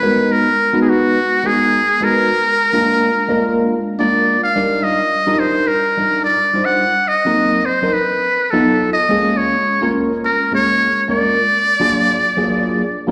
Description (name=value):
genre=jazz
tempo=106 BPM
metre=4/4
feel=straight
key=unclear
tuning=A4 = 438 Hz
part: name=trumpet with metal mute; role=melody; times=0.0-13.0 s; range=Gb4 to Gb5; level=-17 LUFS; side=equal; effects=slapback echo
part: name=tine electric piano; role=accompaniment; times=0.0-13.1 s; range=Gb3 to C5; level=-20 LUFS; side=equal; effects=phaser, slapback echo
room=moderate lush hall reverb, RT60 2.6 s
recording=live gig heard through the venue's PA, club reverb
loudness=-15 LUFS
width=mono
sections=0.0-13.1 A section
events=none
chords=0.0 Abm7; 2.3 Bb7; 4.6 Ebmaj7; 6.8 Cm7b5; 8.0 B7#11; 9.1 Bbm7; 11.4 Bb7b13